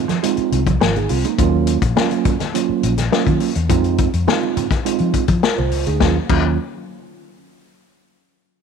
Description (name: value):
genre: funk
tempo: 104 BPM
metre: 4/4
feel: straight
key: Eb dorian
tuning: A4 = 440 Hz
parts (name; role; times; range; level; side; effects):
- mellow tine electric piano; stabs; 0.0-6.6 s; Gb3 to C5; -20 LUFS; right 12 dB; medium stereo tremolo
- mellow electric guitar; riff; 0.1-1.3 s; F3 to Ab3; -26 LUFS; right 10 dB; none
- vintage drum kit; drums; 0.1-6.4 s; crash cymbal, hi-hat, kick drum, snare drum; -20 LUFS; left 5 dB; none
- congas; percussion; 0.1-6.6 s; none; -29 LUFS; right 7 dB; none
- vintage muted fingered electric bass; bass; 0.4-6.6 s; Ab1 to F3; -19 LUFS; left 2 dB; tube saturation
room: light reverb, small room ambience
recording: 1960s-style stereo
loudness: -15 LUFS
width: side -6 dB against mid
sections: 0.0-6.0 A section; 6.0-8.3 B section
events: none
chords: 0.0 Fm7; 1.4 Ebm9; 3.7 Fm7; 6.0 Ebm9